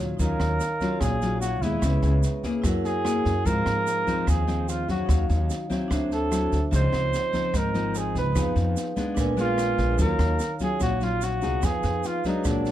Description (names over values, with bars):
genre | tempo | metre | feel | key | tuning
bossa nova | 147 BPM | 4/4 | straight | Eb dorian | A4 = 440 Hz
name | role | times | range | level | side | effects
nylon-string guitar | accompaniment | 0.0-12.7 s | Ab2 to Ab4 | -28 LUFS | left 3 dB | none
vibraphone with medium hard mallets | accompaniment | 0.0-12.7 s | Db4 to Ab5 | -32 LUFS | right 2 dB | none
upright bass | bass | 0.0-12.7 s | Ab1 to Ab2 | -26 LUFS | equal | none
warm flugelhorn | melody | 0.2-12.7 s | D4 to C5 | -27 LUFS | right 2 dB | plate reverb
open jazz drum kit | drums | 0.2-12.7 s | kick drum, rim click, snare drum | -31 LUFS | right 1 dB | none
tube shaker | percussion | 0.2-12.7 s | none | -42 LUFS | right 8 dB | none
room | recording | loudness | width
light reverb | dark, warm production | -22 LUFS | side -12 dB against mid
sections
0.2-12.7 A section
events
none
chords
0.2 Ebm9; 1.8 Dbm7; 2.6 Gb9; 3.5 Ab6; 5.1 Ebm9; 5.9 D9; 6.7 Dbmaj9; 8.4 Fm7b5; 9.2 Bb7b9; 10.0 Ebm9; 11.6 Fm7b5